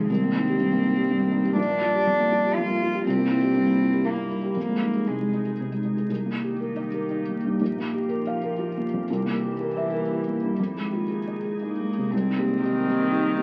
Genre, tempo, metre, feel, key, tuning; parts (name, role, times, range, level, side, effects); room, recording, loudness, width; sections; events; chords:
neoclassical piano and strings; 120 BPM; 3/4; rubato; C minor; A4 = 439 Hz
warm cello; second line; 0.0-13.4 s; Eb3 to F4; -29 LUFS; equal
felt-muted upright piano; accompaniment; 0.0-13.4 s; Bb1 to F5; -28 LUFS; equal
glassy FM pad; sustained chords; 0.0-13.4 s; Eb3 to Bb4; -34 LUFS; equal; ensemble chorus, built-in reverb
clear viola; accompaniment; 12.6-13.4 s; Eb3; -30 LUFS; equal
moderate studio reverb, RT60 0.9 s; very old 78 rpm record, vinyl crackle; -25 LUFS; mono
0.0-6.1 A section; 6.1-12.1 B section; 12.1-13.4 C section
0.1 Cm7; 1.6 Gm7/Bb; 3.0 C7; 4.6 Fm7; 6.1 Cm7; 7.6 Gm7/Bb; 9.1 C7; 10.6 Fm7; 12.1 Cm7